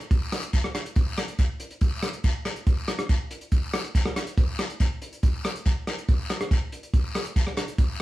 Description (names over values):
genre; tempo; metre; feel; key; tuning
calypso; 140 BPM; 4/4; straight; none; none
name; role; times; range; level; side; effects
warm soul drum kit; drums; 0.0-7.9 s; hi-hat, kick drum, rim click; -23 LUFS; equal; none
guiro; percussion; 0.1-8.0 s; none; -35 LUFS; left 3 dB; none
room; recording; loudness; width
moderate studio reverb, RT60 0.6 s; heard from further back in the room; -24 LUFS; side -17 dB against mid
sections
0.1-8.0 A section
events
none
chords
none